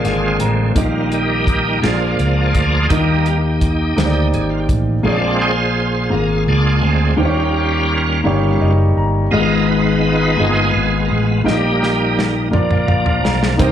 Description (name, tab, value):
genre	slow gospel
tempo	56 BPM (dotted quarters)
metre	6/8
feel	straight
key	Eb major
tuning	A4 = 444 Hz
part	dark baby grand piano	accompaniment	0.0-13.7 s	Ab2 to Bb5	-19 LUFS	left 2 dB	slapback echo
part	bright tonewheel organ	sustained chords	0.0-13.7 s	D3 to C5	-19 LUFS	right 3 dB	slow rotary speaker, chorus vibrato
part	fingered electric bass	bass	0.0-13.7 s	Gb1 to Eb2	-18 LUFS	equal	none
part	warm soul drum kit	drums	0.0-4.9, 11.5-13.7 s	hi-hat, kick drum, snare drum, toms	-20 LUFS	equal	none
room	light reverb, small room reverb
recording	live gig heard through the venue's PA, club reverb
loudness	-13 LUFS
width	side -10 dB against mid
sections	0.0-5.0 A section; 5.0-13.7 B section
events	grand piano fill 0.0-0.8, 8.3-9.3, 12.5-13.6; tonewheel organ solo 0.0-5.0, 5.0-13.7; drum fill 11.5-13.6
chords	0.0 Bb7; 0.8 Eb/Bb; 1.8 Bb; 2.9 Eb; 5.0 Bb7; 7.2 Eb7; 9.3 Abm6; 11.5 Eb/Bb; 12.5 Bb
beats	| 0.76 1.83 | 2.90 3.98 | 5.05 6.12 | 7.19 8.25 | 9.32 10.39 | 11.46 12.52 | 13.59